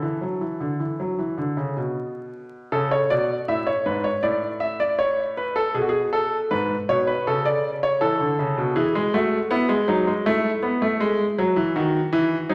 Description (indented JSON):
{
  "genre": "classical, baroque-style two-part invention for grand piano",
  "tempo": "80 BPM",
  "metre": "4/4",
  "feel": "straight",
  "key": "A major",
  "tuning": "A4 = 440 Hz",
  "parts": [
    { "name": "clear concert grand piano", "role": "solo", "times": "0.0-12.5 s", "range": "G#2 to E5", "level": "-23 LUFS", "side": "equal", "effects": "none" }
  ],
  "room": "wet recital hall reverb, RT60 1.5 s",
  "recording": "vinyl crackle",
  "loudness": "-23 LUFS",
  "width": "mono",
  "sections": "0.0-2.7 A section; 2.7-12.5 B section",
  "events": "none",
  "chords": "0.0 A5; 2.7 A; 4.2 D5/A; 5.7 G#m; 7.3 A/C#; 8.8 E; 10.3 A5; 11.7 D#m",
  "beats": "0.42 1.19 1.96 | 2.72 3.48 4.23 4.99 | 5.75 6.50 7.26 8.01 | 8.76 9.51 10.25 11.00 | 11.75 12.49"
}